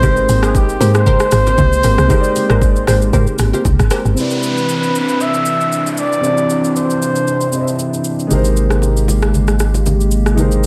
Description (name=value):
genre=amapiano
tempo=116 BPM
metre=4/4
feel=swing 55% on 16ths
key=unclear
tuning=A4 = 440 Hz
part: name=trumpet with bucket mute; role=melody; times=0.0-8.0 s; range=G4 to E5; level=-20 LUFS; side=equal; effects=diffuse ambient delay
part: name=dark baby grand piano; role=accompaniment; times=0.0-10.7 s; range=C3 to E5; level=-23 LUFS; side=equal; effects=subtle chorus
part: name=hollow soft pad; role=sustained chords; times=0.0-10.7 s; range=C3 to G4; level=-23 LUFS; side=equal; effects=chorus, sidechain pumping
part: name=punchy chord stab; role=stabs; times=0.0-4.0 s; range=G4 to C5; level=-25 LUFS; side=equal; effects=chorus, diffuse ambient delay
part: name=woody log drum bass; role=bass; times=0.0-4.2 s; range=G1 to Ab2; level=-17 LUFS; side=equal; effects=none
part: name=smooth R&B drum kit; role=drums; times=0.0-10.7 s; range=hi-hat, kick drum, rim click, shaker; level=-21 LUFS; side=equal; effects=overdrive
part: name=congas and bongos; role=percussion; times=0.0-4.0, 8.3-10.5 s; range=none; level=-25 LUFS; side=equal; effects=none
part: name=downlifter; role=sound effects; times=4.2-8.3 s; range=none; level=-29 LUFS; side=equal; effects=none
part: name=saturated sub bass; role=bass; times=8.3-10.7 s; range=Ab1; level=-17 LUFS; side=equal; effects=none
room=moderate plate reverb, RT60 1.0 s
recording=dreamy mix soaked in reverb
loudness=-14 LUFS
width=mono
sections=0.0-4.2 A section; 4.2-10.7 B section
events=drop 0.0-4.2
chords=0.0 Abmaj9; 4.2 Cmaj9; 8.3 Abmaj9